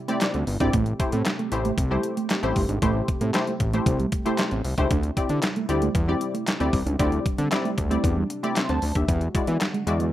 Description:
early-eighties boogie funk; 115 BPM; 4/4; straight; A4 = 440 Hz
warm analog pad; sustained chords; 0.0-10.1 s; C3 to G4; -34 LUFS; equal; chorus
funky polysynth comp; accompaniment; 0.1-10.1 s; G#3 to C6; -28 LUFS; left 2 dB; chorus
mellow electric guitar; riff; 0.1-10.1 s; G3 to E4; -30 LUFS; right 5 dB; wide subtle chorus
detuned 8-bit digital drum machine; drums; 0.1-10.1 s; handclaps, hi-hat, kick drum, snare drum; -26 LUFS; equal; overdrive
fat analog bass; bass; 0.3-10.1 s; G1 to E3; -25 LUFS; equal
light reverb, digital ambience; rough home demo mix; -22 LUFS; side -13 dB against mid
0.0-10.1 A section
0.0 D9sus4; 9.1 E9

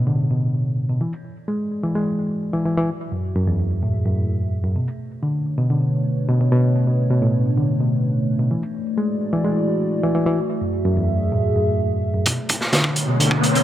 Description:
breakbeat, breaks; 128 BPM; 4/4; straight; B dorian; A4 = 443 Hz
dark analog pad; sustained chords; 0.0-13.6 s; A3 to E5; -26 LUFS; equal; chorus, phaser, sidechain pumping
reed electric piano; riff; 0.0-13.6 s; E2 to G#3; -19 LUFS; equal; overdrive, low-pass filter
crunchy breakbeat drum kit; drums; 12.3-13.6 s; hi-hat, kick drum, snare drum; -20 LUFS; equal; high-pass filter on kick, high-pass filter on hats, high-pass filter on snare, high-pass filter on room
riser; sound effects; 12.7-13.6 s; -23 LUFS; right 1 dB
light reverb, small room ambience; -18 LUFS; side -12 dB against mid
0.0-12.3 A section; 12.3-13.6 B section
filter sweep on analog synth pad 0.0-12.3; build-up 12.3-13.6; filter sweep on reed electric piano 12.3-13.6; riser 12.7-13.6
0.0 Bm9; 1.0 Esus2; 2.9 F#m9; 4.8 Bm9; 8.5 E9sus4; 10.4 F#m9; 12.3 Bm9

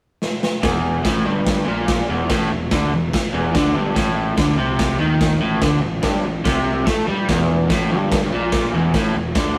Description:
garage rock duo or trio; 144 BPM; 4/4; straight; A4 = 439 Hz
raw garage drum kit; drums; 0.2-9.5 s; crash cymbal, kick drum, snare drum; -23 LUFS; equal
crunchy overdriven guitar; riff; 0.6-9.6 s; E2 to A3; -22 LUFS; equal
fuzz fingered electric bass; bass; 0.6-9.5 s; E1 to A2; -27 LUFS; equal; overdrive
light reverb; rough rehearsal-room recording; -19 LUFS; mono
0.6-9.6 A section
drum fill 0.2-0.6
0.0 N.C.; 0.6 Em7b5; 4.0 Cm69; 7.3 Em7b5

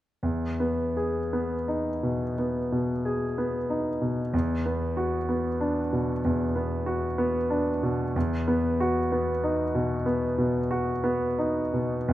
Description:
classical; 54-64 BPM; 4/4; rubato; E major; A4 = 440 Hz
clear concert grand piano; accompaniment; 0.2-12.1 s; E2 to G#4; -25 LUFS; equal
moderate concert hall reverb, RT60 2.1 s; close, detailed microphones; -25 LUFS; side -14 dB against mid
0.2-12.1 A section
0.2 Emaj7; 4.3 D69/E; 8.2 Esus2

